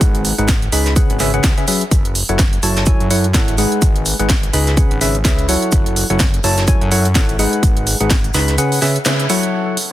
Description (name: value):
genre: piano house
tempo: 126 BPM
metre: 4/4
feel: swing 57% on 16ths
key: F# dorian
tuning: A4 = 441 Hz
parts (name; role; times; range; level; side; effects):
- percussive organ stab; riff; 0.0-9.8 s; C#3 to B5; -18 LUFS; equal; chorus, sidechain pumping, dub echo
- fat analog bass; bass; 0.0-8.6 s; F#1 to F#2; -19 LUFS; equal; tube saturation, sidechain pumping
- electronic kick drum; drums; 0.0-8.2 s; none; -15 LUFS; equal; none
- house drum kit; drums; 0.0-9.9 s; hi-hat, snare drum; -20 LUFS; right 1 dB; none
- soft brush drum kit; drums; 0.0-9.5 s; hi-hat, shaker, snare drum; -26 LUFS; right 2 dB; none
room: light reverb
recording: dense, heavily limited modern master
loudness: -12 LUFS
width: side -14 dB against mid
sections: 0.0-9.5 A section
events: band accent 9.1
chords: 0.0 G#m7; 1.0 C#m7; 1.9 F#m7; 3.6 G#m7; 4.8 C#m7; 5.7 F#m7; 7.4 G#m7; 8.6 C#m7